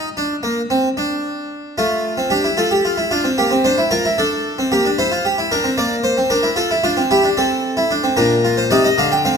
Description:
classical, baroque-style 3-part fugue for harpsichord; 75 BPM (dotted quarters); 12/8; straight; A4 = 440 Hz
harpsichord; solo; 0.0-9.4 s; Bb2 to G5; -15 LUFS; equal
moderate recital hall reverb, RT60 1.8 s; -15 LUFS; side -6 dB against mid
0.0-9.4 A section
0.0 N.C.; 1.8 F/A; 3.4 Gm/Bb; 5.0 C7; 6.6 F; 8.2 Bb

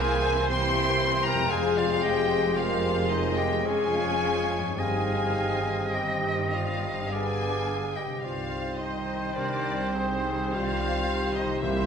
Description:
classical, slow romantic movement for symphony orchestra; 49-61 BPM; 3/4; rubato; C minor; A4 = 441 Hz
rich studio violin section; melody; 0.0-11.9 s; C5 to C6; -31 LUFS; left 3 dB
clear oboe; second line; 0.0-11.9 s; C5 to Eb5; -35 LUFS; right 2 dB
dark studio violin section; second line; 0.0-11.9 s; Bb3 to F4; -37 LUFS; left 3 dB
silver concert flute; second line; 0.0-11.9 s; Ab4 to G5; -35 LUFS; right 1 dB
warm clarinet; second line; 0.0-11.9 s; C4 to C5; -34 LUFS; equal
clear studio viola section; accompaniment; 0.0-11.9 s; C3 to C4; -36 LUFS; right 2 dB
mellow bassoon; accompaniment; 0.0-11.9 s; Ab3 to C4; -35 LUFS; equal
mellow French horn section; sustained chords; 0.0-11.9 s; Eb4 to Bb4; -32 LUFS; left 2 dB
concert harp; arpeggios; 0.0-11.9 s; F2 to Db5; -38 LUFS; left 7 dB
rich studio double bass section; bass; 0.0-11.9 s; F1 to C2; -35 LUFS; right 2 dB
warm studio cello section; bass; 0.0-11.9 s; C2 to C3; -35 LUFS; right 2 dB
timpani; percussion; 11.6-11.9 s; C3; -36 LUFS; equal
wet concert hall reverb, RT60 2.0 s; minimal, uncompressed stereo recording; -24 LUFS; side -7 dB against mid
0.0-11.9 A section
0.0 C7; 1.5 Fm; 3.6 Db/F; 4.8 Cm/G; 7.1 G; 8.2 Cm

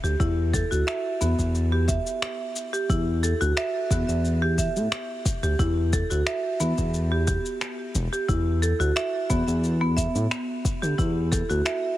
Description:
organic downtempo; 89 BPM; 4/4; straight; E minor; A4 = 440 Hz
marimba with medium hard mallets; arpeggios; 0.0-11.8 s; B3 to E5; -26 LUFS; right 1 dB; tape echo
smooth gliding synth bass; bass; 0.0-11.6 s; E1 to A2; -24 LUFS; equal; tube saturation, sidechain pumping
electronic cabasa and finger snaps; drums; 0.0-11.8 s; -33 LUFS; left 1 dB
electronic kick drum; drums; 0.2-11.5 s; -27 LUFS; equal
light reverb; heavily compressed radio sound, multiband compression; -22 LUFS; side -14 dB against mid
0.0-12.0 A section
0.0 Em; 2.9 N.C.

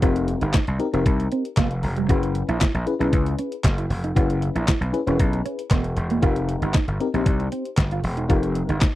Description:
early-eighties boogie funk; 116 BPM; 4/4; straight; A4 = 440 Hz
mellow FM electric piano; accompaniment; 0.0-8.7 s; C4 to Bb5; -25 LUFS; left 4 dB; chorus
mellow electric guitar; riff; 0.0-8.9 s; G3 to Gb4; -28 LUFS; right 5 dB; analog chorus
gritty slap bass; bass; 0.0-8.8 s; Fb1 to Db2; -24 LUFS; equal; overdrive
detuned 8-bit digital drum machine; drums; 0.0-8.9 s; handclaps, hi-hat, kick drum, snare drum; -21 LUFS; equal
group handclap; percussion; 0.5-8.9 s; -32 LUFS; left 12 dB
little or no reverb; dry, close 1970s-style studio recording; -20 LUFS; side -15 dB against mid
0.0-9.0 A section
FM electric piano fill 1.3-2.1
0.0 F9sus4; 2.1 Gb9sus4; 6.2 F9sus4

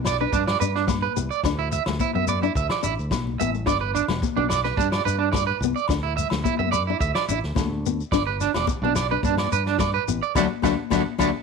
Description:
highlife guitar band; 108 BPM; 4/4; straight; G major; A4 = 439 Hz
nylon-string guitar; accompaniment; 0.0-11.3 s; F#3 to D4; -26 LUFS; left 15 dB
fingered electric bass; bass; 0.0-11.3 s; E1 to G2; -28 LUFS; equal
vintage drum kit; drums; 0.0-11.3 s; kick drum, snare drum; -29 LUFS; equal
electric guitar at the edge of break-up; arpeggios; 0.1-11.3 s; D4 to F#5; -25 LUFS; right 14 dB; tremolo, slapback echo
agogo bells; percussion; 0.1-11.3 s; -35 LUFS; left 10 dB
congas; percussion; 0.1-11.3 s; -31 LUFS; left 16 dB
shekere; percussion; 0.1-11.3 s; -32 LUFS; left 6 dB
small room ambience; 1960s-style stereo with parts hard left and right; -21 LUFS; side -5 dB against mid
0.0-11.4 A section
drum fill 3.3-3.7; band accent 10.4-11.4
0.0 G; 1.4 Dadd9; 3.7 G; 5.9 Dadd9; 8.1 G; 10.4 Dadd9

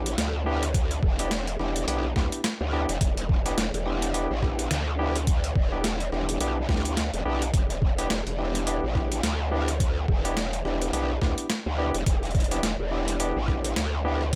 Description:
glitch hop; 106 BPM; 4/4; swing 58% on 16ths; E minor pentatonic; A4 = 440 Hz
barky tine electric piano; stabs; 0.0-14.2 s; B3 to G4; -33 LUFS; equal; sidechain pumping, delay
growl bass; bass; 0.0-14.4 s; E1 to D2; -30 LUFS; equal; distortion, chorus, tube saturation
boom bap sampler-style drum kit; drums; 0.1-14.4 s; hi-hat, rim click, snare drum; -33 LUFS; equal; overdrive
electronic kick drum; drums; 0.7-14.4 s; -28 LUFS; equal; overdrive
little or no reverb; -26 LUFS; mono
0.0-14.4 A section
0.0 Em7

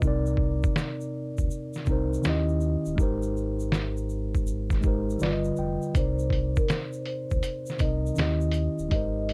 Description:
lo-fi hip hop; 81 BPM; 4/4; swing 65% on 16ths; C minor; A4 = 438 Hz
mellow tine electric piano; accompaniment; 0.0-9.3 s; C3 to G5; -32 LUFS; equal; low-pass filter
sub bass with octave; bass; 0.0-9.3 s; Eb1 to Eb2; -32 LUFS; equal
lo-fi sampler-style drum kit; drums; 0.0-9.3 s; hi-hat, kick drum, snare drum; -29 LUFS; equal; vintage 12-bit sampler grit
egg shaker; percussion; 0.0-8.9 s; -54 LUFS; equal
vibraphone with soft mallets; melody; 6.0-9.3 s; Bb4 to Eb5; -36 LUFS; equal; low-pass filter
light reverb; cassette tape; -27 LUFS; mono
0.0-9.3 A section
break 0.0-5.9; tine electric piano fill 4.8-5.9
0.0 Cm7; 2.2 Eb7b9; 3.0 Abmaj7; 5.2 G7b13; 5.9 Cm7; 8.2 Eb7b9

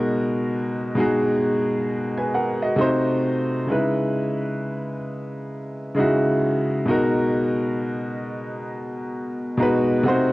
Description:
hip hop; 66 BPM; 4/4; swing 64% on 16ths; C# dorian; A4 = 440 Hz
clear upright piano; solo; 0.0-10.3 s; B2 to A#5; -20 LUFS; equal; cassette tape, low-pass filter
wet small room reverb, RT60 0.5 s; worn, warbling old tape, cassette tape, warbly pitch drift; -20 LUFS; side -19 dB against mid
0.0-3.7 A section; 3.7-10.3 B section
upright piano fill 9.1-10.3
0.0 G#m9/B; 2.8 Cdim7; 3.7 C#m7; 6.9 G#m9/B

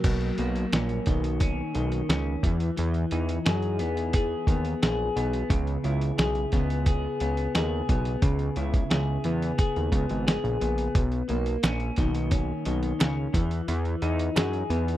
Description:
indie pop, bedroom pop; 88 BPM; 4/4; straight; B major; A4 = 443 Hz
electric guitar at the edge of break-up; accompaniment; 0.0-15.0 s; C#3 to G#4; -29 LUFS; left 2 dB; wide subtle chorus, warbly pitch drift
fat analog bass; bass; 0.0-15.0 s; G#1 to F#2; -28 LUFS; equal
dusty soul sampler-style drum kit; drums; 0.0-15.0 s; crash cymbal, hi-hat, kick drum, snare drum; -26 LUFS; equal; overdrive
group handclap; percussion; 11.6-14.5 s; -36 LUFS; right 8 dB
little or no reverb; dry, close 1970s-style studio recording; -24 LUFS; side -14 dB against mid
0.0-15.0 A section
0.0 Bmaj9; 2.4 Emaj7; 5.5 C#m7; 11.0 Bmaj9; 13.3 Emaj7

